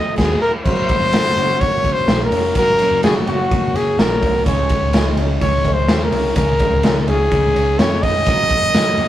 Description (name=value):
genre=jangly indie pop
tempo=126 BPM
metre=4/4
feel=straight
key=unclear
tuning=A4 = 442 Hz
part: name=clear trumpet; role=melody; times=0.0-9.1 s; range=Gb4 to Eb5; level=-17 LUFS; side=equal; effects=none
part: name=hollow soft pad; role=sustained chords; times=0.0-0.6, 8.3-9.1 s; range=Db4 to Cb6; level=-40 LUFS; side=left 2 dB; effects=none
part: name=picked steel-string acoustic guitar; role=accompaniment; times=0.2-9.1 s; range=Gb2 to Gb4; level=-27 LUFS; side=right 4 dB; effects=none
part: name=vintage muted picked electric bass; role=bass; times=0.2-9.1 s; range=F1 to F2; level=-22 LUFS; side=equal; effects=none
part: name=raw garage drum kit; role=drums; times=0.2-9.1 s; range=crash cymbal, hi-hat, kick drum, ride cymbal, snare drum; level=-18 LUFS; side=equal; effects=none
part: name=electric guitar through a small old amp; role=arpeggios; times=0.7-9.1 s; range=Gb2 to Gb4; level=-25 LUFS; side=left 1 dB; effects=analog delay
room=light reverb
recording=rough rehearsal-room recording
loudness=-14 LUFS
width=side -12 dB against mid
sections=0.7-9.1 A section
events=band accent 0.0-0.7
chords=0.0 Cb6/Eb; 0.7 Gb; 4.5 Dbsus2; 8.3 Gb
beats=0.17 | 0.65 1.13 1.60 2.08 | 2.55 3.03 3.51 3.98 | 4.46 4.93 5.41 5.89 | 6.36 6.84 7.32 7.79 | 8.27 8.74